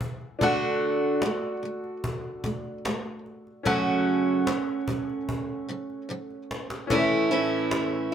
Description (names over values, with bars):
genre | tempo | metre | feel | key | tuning
acoustic pop | 74 BPM | 4/4 | straight | unclear | A4 = 439 Hz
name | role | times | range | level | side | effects
bright upright piano | accompaniment | 0.0-8.1 s | C#4 to F#5 | -32 LUFS | left 3 dB | none
cajon | drums | 0.0-7.9 s | none | -33 LUFS | left 1 dB | none
picked steel-string acoustic guitar | accompaniment | 0.4-8.1 s | F#2 to F#4 | -26 LUFS | right 2 dB | none
room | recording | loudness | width
light reverb | none | -24 LUFS | side -8 dB against mid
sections
0.0-6.9 A section; 6.9-8.1 B section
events
drum fill 5.3-6.9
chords
0.4 D; 3.7 F#m; 6.9 A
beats
| 0.41 1.22 2.03 2.85 | 3.66 4.47 5.28 6.09 | 6.91 7.72